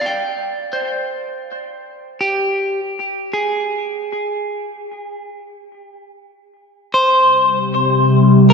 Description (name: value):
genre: ambient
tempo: free time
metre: none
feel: none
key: unclear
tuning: A4 = 440 Hz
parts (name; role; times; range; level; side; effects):
- electric guitar at the edge of break-up; arpeggios; 0.0-8.5 s; G4 to G5; -18 LUFS; equal; spring reverb, analog delay
- organ-like drone; drone; 7.6-8.5 s; C3 to G3; -11 LUFS; left 1 dB; ensemble chorus, built-in reverb
room: wet lush hall reverb, RT60 2.6 s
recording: dreamy mix soaked in reverb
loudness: -15 LUFS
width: side -5 dB against mid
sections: 0.0-8.5 A section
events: fade-in on clean electric guitar 0.0-8.5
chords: 0.0 Eb69 (rootless); 2.4 N.C.; 7.2 Gsus4/C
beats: free time